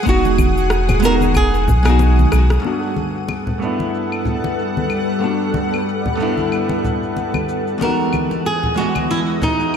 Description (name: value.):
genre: sunset chillout.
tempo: 93 BPM.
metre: 4/4.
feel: swing 57% on 16ths.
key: unclear.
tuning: A4 = 444 Hz.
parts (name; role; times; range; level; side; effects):
archtop guitar, miked and amplified; accompaniment; 0.0-9.8 s; E2 to D#5; -21 LUFS; right 1 dB; auto-pan, low-pass filter, ping-pong delay.
shimmering ambient pad; sustained chords; 0.0-9.8 s; E3 to D#6; -23 LUFS; left 2 dB; chorus, built-in reverb.
flamenco guitar; melody; 0.1-2.3, 7.8-9.8 s; D#4 to Bb4; -20 LUFS; right 1 dB; ping-pong delay.
warm sub bass; bass; 0.1-2.6 s; E1 to B1; -15 LUFS; equal; none.
electronic cabasa, claves and rim click; drums; 0.1-9.8 s; none; -27 LUFS; left 2 dB; overdrive, low-pass filter on perc, studio reverb, low-pass filter on snare.
electronic kick drum; drums; 0.1-1.8 s; none; -19 LUFS; equal; studio reverb.
congas; percussion; 0.3-9.6 s; none; -24 LUFS; left 2 dB; none.
room: moderate plate reverb, RT60 1.8 s.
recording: dreamy mix soaked in reverb.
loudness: -15 LUFS.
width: side -8 dB against mid.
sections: 0.0-2.6 A section; 2.6-9.8 B section.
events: drum fill 2.3-2.6.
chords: 0.0 Emaj9; 2.6 Gmaj9; 7.8 Emaj9.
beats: | 0.07 0.71 1.35 2.00 | 2.65 3.29 3.94 4.58 | 5.23 5.87 6.52 7.16 | 7.81 8.45 9.10 9.74.